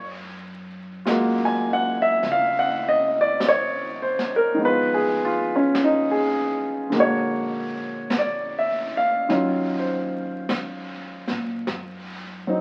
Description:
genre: jazz ballad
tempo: 51 BPM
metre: 4/4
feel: swing 69% on 8ths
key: unclear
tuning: A4 = 440 Hz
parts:
  - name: upright bass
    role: bass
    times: 0.0-12.6 s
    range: Bb1 to Bb2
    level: -42 LUFS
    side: equal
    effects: none
  - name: warm baby grand piano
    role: accompaniment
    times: 1.1-12.6 s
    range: D3 to Ab5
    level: -23 LUFS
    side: equal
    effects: none
  - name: jazz brush drum kit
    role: drums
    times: 1.1-12.6 s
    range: brushed snare drum, hi-hat, snare drum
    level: -34 LUFS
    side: equal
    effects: none
room: moderate large studio reverb, RT60 1.0 s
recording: very old 78 rpm record, vinyl crackle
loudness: -23 LUFS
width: mono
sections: 0.0-12.6 A section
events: none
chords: 0.0 Gbmaj9; 4.6 Fm7b5; 6.9 Bb7alt; 9.3 Ebm9

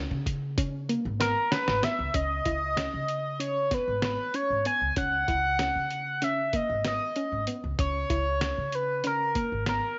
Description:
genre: progressive instrumental, band music in an uneven meter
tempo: 191 BPM (eighths)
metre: 9/8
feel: straight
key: C# dorian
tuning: A4 = 443 Hz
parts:
  - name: soft round pluck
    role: arpeggios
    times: 0.0-9.8 s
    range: A#3 to E4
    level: -38 LUFS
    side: equal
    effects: chorus
  - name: upright bass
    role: bass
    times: 0.0-9.8 s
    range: G#1 to C#3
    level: -36 LUFS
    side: equal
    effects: none
  - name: lo-fi sampler-style drum kit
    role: drums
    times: 0.3-9.8 s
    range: hi-hat, kick drum, snare drum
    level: -34 LUFS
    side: equal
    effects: none
  - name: sync lead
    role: melody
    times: 1.2-10.0 s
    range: A#4 to G#5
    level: -30 LUFS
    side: equal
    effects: chorus
room: moderate echo chamber reverb, RT60 1.7 s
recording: nothing above 7.6 kHz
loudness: -28 LUFS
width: mono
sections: 0.0-2.1 A section; 2.1-10.0 B section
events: drum fill 1.2-2.1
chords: 0.0 C#7(no3); 2.1 C#m7

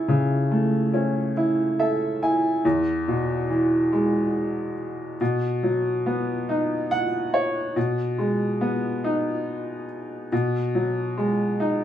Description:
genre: pop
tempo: 47 BPM (dotted quarters)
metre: 6/8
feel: straight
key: unclear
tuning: A4 = 436 Hz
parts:
  - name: clear upright piano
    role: solo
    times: 0.0-11.8 s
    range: E2 to G#5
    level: -21 LUFS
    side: equal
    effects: none
room: wet studio reverb, RT60 0.8 s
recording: band playing live in one room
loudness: -21 LUFS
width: side -11 dB against mid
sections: 0.0-2.6 A section; 2.6-11.8 B section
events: upright piano fill 1.4-2.6, 6.5-7.8, 11.6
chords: 0.0 A/C#; 2.6 E; 5.2 B; 7.8 G#m/B; 10.3 B6

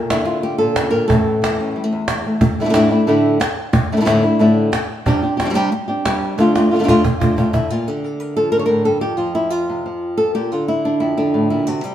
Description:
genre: flamenco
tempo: 182 BPM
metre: 4/4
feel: straight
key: unclear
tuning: A4 = 437 Hz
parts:
  - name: flamenco guitar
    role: melody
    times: 0.0-11.9 s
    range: E2 to C#5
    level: -15 LUFS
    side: equal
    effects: none
  - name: cajon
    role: percussion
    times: 0.1-7.6 s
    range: none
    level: -21 LUFS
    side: right 2 dB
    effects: none
room: wet stone room reverb, RT60 1.3 s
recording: band playing live in one room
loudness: -15 LUFS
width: side -11 dB against mid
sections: 0.0-2.4 A section; 2.4-7.7 B section; 7.7-11.9 C section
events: drum fill 6.4-7.7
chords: 0.0 Bb; 1.1 A; 2.4 Asus4; 5.1 Csus2; 6.4 Dm; 7.7 Bb; 9.0 F5; 10.4 Bb

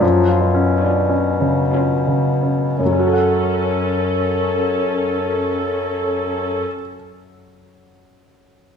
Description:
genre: classical, romantic movement for piano and orchestra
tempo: 54-78 BPM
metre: 3/4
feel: rubato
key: F# minor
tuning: A4 = 439 Hz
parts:
  - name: clear baby grand piano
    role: melody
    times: 0.0-8.8 s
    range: F#2 to F#5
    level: -18 LUFS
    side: right 1 dB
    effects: none
  - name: mellow bassoon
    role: accompaniment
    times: 0.0-6.6 s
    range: F#2 to E#3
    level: -21 LUFS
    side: left 6 dB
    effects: none
  - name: warm studio viola section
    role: accompaniment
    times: 0.8-6.6 s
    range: C#4 to A4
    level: -23 LUFS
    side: equal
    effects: none
room: moderate recital hall reverb, RT60 1.7 s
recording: small room ambience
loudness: -16 LUFS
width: side -7 dB against mid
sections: 0.0-2.8 A section; 2.8-8.8 B section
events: slowing down 0.0-2.8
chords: 0.0 C#7/F#; 2.8 F#m

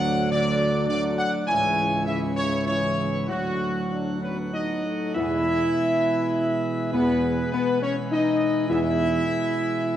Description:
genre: classical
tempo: 102 BPM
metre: 3/4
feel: straight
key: E major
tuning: A4 = 440 Hz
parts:
  - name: clear trumpet section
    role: melody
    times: 0.0-10.0 s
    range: F#4 to G#5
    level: -27 LUFS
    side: equal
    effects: none
  - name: clear trombone section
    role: sustained chords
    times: 0.0-8.9 s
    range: C#3 to B3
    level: -33 LUFS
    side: right 2 dB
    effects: none
  - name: dark French horn section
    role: sustained chords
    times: 0.0-10.0 s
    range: A3 to E4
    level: -26 LUFS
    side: left 1 dB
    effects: none
  - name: pipe organ, plenum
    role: sustained chords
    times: 0.0-10.0 s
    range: G#2 to F#5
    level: -29 LUFS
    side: left 1 dB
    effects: none
  - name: warm tuba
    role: bass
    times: 0.0-9.2 s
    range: C#2 to E2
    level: -29 LUFS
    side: right 3 dB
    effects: none
room: wet scoring stage reverb, RT60 1.7 s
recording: worn, warbling old tape, cassette tape, warbly pitch drift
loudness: -21 LUFS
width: side -11 dB against mid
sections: 0.0-5.2 A section; 5.2-10.0 B section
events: none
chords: 0.0 D; 1.5 C#m; 3.3 D; 5.2 E

